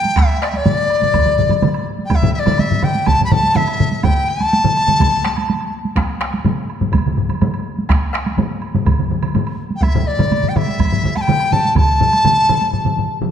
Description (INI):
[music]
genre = japanese traditional, taiko drum ensemble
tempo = 124 BPM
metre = 4/4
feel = straight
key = A suspended pentatonic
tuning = A4 = 440 Hz
[part]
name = mellow dizi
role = melody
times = 0.0-5.7, 9.8-13.2 s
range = D5 to B5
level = -17 LUFS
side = left 2 dB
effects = none
[part]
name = solo taiko drums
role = percussion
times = 0.0-12.7 s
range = none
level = -23 LUFS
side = right 3 dB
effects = none
[part]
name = taiko ensemble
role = percussion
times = 0.2-13.3 s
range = none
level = -20 LUFS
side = left 3 dB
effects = none
[part]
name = taiko ensemble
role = percussion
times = 0.2-13.3 s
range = none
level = -22 LUFS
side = right 4 dB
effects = none
[part]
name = taiko ensemble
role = percussion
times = 0.2-11.9 s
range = none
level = -19 LUFS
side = right 1 dB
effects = none
[part]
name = woodblock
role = percussion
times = 0.2-12.6 s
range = none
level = -32 LUFS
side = right 5 dB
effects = none
[sound]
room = wet scoring stage reverb, RT60 1.9 s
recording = none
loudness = -14 LUFS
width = side -8 dB against mid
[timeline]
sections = 0.0-13.3 A section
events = break 12.7-13.3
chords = none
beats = | 0.17 0.65 1.14 1.62 | 2.10 2.59 3.07 3.55 | 4.04 4.52 5.00 5.49 | 5.97 6.45 6.94 7.42 | 7.90 8.38 8.87 9.35 | 9.83 10.31 10.80 11.28 | 11.76 12.24 12.73 13.21